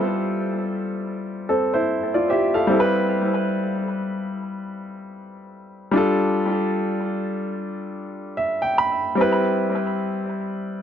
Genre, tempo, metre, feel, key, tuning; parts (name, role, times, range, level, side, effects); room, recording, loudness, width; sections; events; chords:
reggae; 74 BPM; 4/4; swing 61% on 16ths; C major; A4 = 437 Hz
clear baby grand piano; solo; 0.0-10.8 s; G3 to B5; -21 LUFS; equal; tape echo
moderate booth ambience, RT60 0.2 s; dry, close 1970s-style studio recording; -20 LUFS; side -9 dB against mid
0.0-10.8 A section
grand piano fill 8.0-9.2
0.0 G9sus4; 2.7 Cmaj7; 5.9 F69; 9.2 Cmaj7